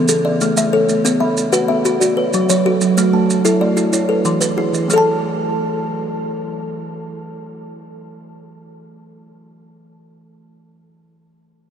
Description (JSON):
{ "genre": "southern african traditional, mbira-style interlocking cycle", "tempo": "125 BPM (dotted quarters)", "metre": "12/8", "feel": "straight", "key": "A major", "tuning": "A4 = 441 Hz", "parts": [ { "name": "kalimba", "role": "arpeggios", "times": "0.0-10.0 s", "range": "E3 to A5", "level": "-17 LUFS", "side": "left 3 dB", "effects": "none" }, { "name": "kalimba", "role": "arpeggios", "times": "0.0-10.0 s", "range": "E3 to B5", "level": "-19 LUFS", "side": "right 3 dB", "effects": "none" }, { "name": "maracas", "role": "percussion", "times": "0.1-5.0 s", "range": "none", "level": "-24 LUFS", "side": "right 6 dB", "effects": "none" } ], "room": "wet huge ambient reverb, RT60 7.9 s", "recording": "in a vast, echoing space", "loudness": "-14 LUFS", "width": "side -8 dB against mid", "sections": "0.0-4.9 A section; 4.9-8.7 B section", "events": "none", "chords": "0.1 A; 1.1 B5; 2.0 F#m; 3.0 A5; 3.9 E; 4.9 A5" }